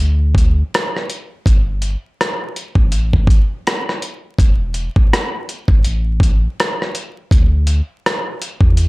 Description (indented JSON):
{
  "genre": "lo-fi hip hop",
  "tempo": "82 BPM",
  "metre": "4/4",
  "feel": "swing 59% on 16ths",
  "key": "unclear",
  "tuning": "A4 = 440 Hz",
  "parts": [
    { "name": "warm sub bass", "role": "bass", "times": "0.0-8.9 s", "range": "E1 to E2", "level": "-16 LUFS", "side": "equal", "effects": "none" },
    { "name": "dusty soul sampler-style drum kit", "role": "drums", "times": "0.3-8.9 s", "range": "hi-hat, kick drum, rim click", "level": "-14 LUFS", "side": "equal", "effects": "none" }
  ],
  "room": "little or no reverb",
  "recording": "dry, gritty hardware recording, vinyl crackle",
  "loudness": "-14 LUFS",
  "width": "side -23 dB against mid",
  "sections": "0.0-8.9 A section",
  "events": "none",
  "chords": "none",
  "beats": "0.72 | 1.46 2.19 2.92 3.65 | 4.38 5.12 5.85 6.58 | 7.31 8.04 8.77"
}